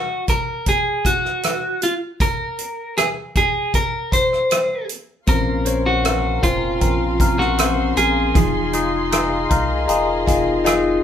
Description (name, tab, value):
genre	pop ballad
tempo	78 BPM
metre	4/4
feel	straight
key	unclear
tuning	A4 = 437 Hz
part	electric guitar at the edge of break-up	melody	0.0-10.2 s	F4 to C5	-20 LUFS	equal	none
part	natural country drum kit	drums	0.3-10.8 s	hi-hat, kick drum, rim click	-21 LUFS	right 1 dB	none
part	bell-like tine electric piano	accompaniment	5.3-11.0 s	Bb2 to Db5	-20 LUFS	left 3 dB	phaser
part	muted studio string section	sustained chords	5.3-11.0 s	Ab4 to C6	-28 LUFS	equal	none
part	fingerpicked steel-string acoustic guitar	arpeggios	5.3-11.0 s	Bb2 to C5	-32 LUFS	right 4 dB	none
part	saturated sub bass	bass	5.3-11.0 s	F1 to C2	-25 LUFS	equal	none
room	wet studio reverb, RT60 0.6 s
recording	band playing live in one room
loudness	-17 LUFS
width	side -9 dB against mid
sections	0.0-11.0 A section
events	none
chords	0.0 N.C.; 5.3 Bbmadd9; 8.4 Fm7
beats	0.66 1.43 | 2.20 2.97 3.74 4.51 | 5.28 6.05 6.82 7.59 | 8.36 9.12 9.89 10.66